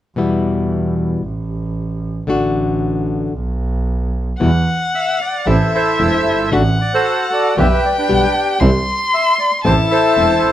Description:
tango; 114 BPM; 4/4; rubato; E minor; A4 = 440 Hz
flamenco guitar; accompaniment; 0.2-10.3 s; B2 to G4; -18 LUFS; left 3 dB
clear double bass; bass; 0.2-10.5 s; E1 to E2; -18 LUFS; right 2 dB
warm violin; second line; 4.4-10.5 s; E5 to C6; -18 LUFS; left 2 dB
bandoneon; melody; 4.9-10.5 s; D4 to E5; -16 LUFS; equal; plate reverb
moderate studio reverb, RT60 0.7 s; -14 LUFS; side -12 dB against mid
0.2-4.4 A section; 4.4-10.5 B section
0.2 Em; 1.2 N.C.; 2.3 D/A; 3.3 N.C.; 4.4 E5; 5.5 Am; 6.5 D/A; 7.6 G/B; 8.6 C; 9.6 Am

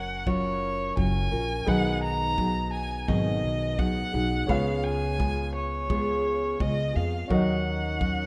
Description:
acoustic pop; 85 BPM; 4/4; straight; A4 = 440 Hz
warm violin; melody; 0.0-8.3 s; C#5 to A#5; -33 LUFS; equal
clear upright piano; accompaniment; 0.0-8.3 s; C#4 to F#5; -37 LUFS; equal
fingerpicked steel-string acoustic guitar; accompaniment; 0.0-8.3 s; B2 to A#4; -31 LUFS; equal
upright bass; bass; 0.0-8.3 s; F#1 to E#2; -34 LUFS; equal
kick drum; drums; 0.3-8.2 s; -34 LUFS; equal
light reverb, studio ambience; rough home demo mix; -27 LUFS; mono
0.0-8.3 A section
0.0 F#maj7; 1.7 B6; 4.5 C#7; 7.3 D#m7

